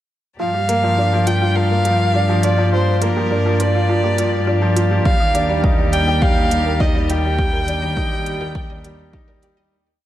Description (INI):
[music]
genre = piano and strings electronica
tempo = 103 BPM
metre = 4/4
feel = straight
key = G minor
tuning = A4 = 440 Hz
[part]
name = dark violin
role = melody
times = 0.4-9.1 s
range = Bb4 to G5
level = -21 LUFS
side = right 1 dB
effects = shimmer reverb
[part]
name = dark string quartet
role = sustained chords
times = 0.4-9.7 s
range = Eb3 to D5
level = -28 LUFS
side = left 1 dB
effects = sidechain pumping, shimmer reverb
[part]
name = wide unison pluck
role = arpeggios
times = 0.4-9.7 s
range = F4 to Eb5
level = -30 LUFS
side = right 2 dB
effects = none
[part]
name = clear upright piano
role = riff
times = 0.4-9.7 s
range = F3 to G4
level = -21 LUFS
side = left 1 dB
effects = shimmer reverb
[part]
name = warm symphonic double bass section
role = bass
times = 0.4-9.7 s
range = Eb2 to G2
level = -19 LUFS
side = equal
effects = sidechain pumping
[part]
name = electronic hi-hat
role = drums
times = 0.7-9.5 s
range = none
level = -30 LUFS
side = right 3 dB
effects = none
[part]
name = electronic kick drum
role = drums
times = 5.1-9.3 s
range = none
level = -19 LUFS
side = equal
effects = overdrive
[sound]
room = moderate echo chamber reverb, RT60 2.4 s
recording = none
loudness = -15 LUFS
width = side -13 dB against mid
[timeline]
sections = 0.4-9.7 build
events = build-up 0.4-9.7; fade-out 6.6-9.7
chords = 0.4 Gm7; 5.1 Ebmaj7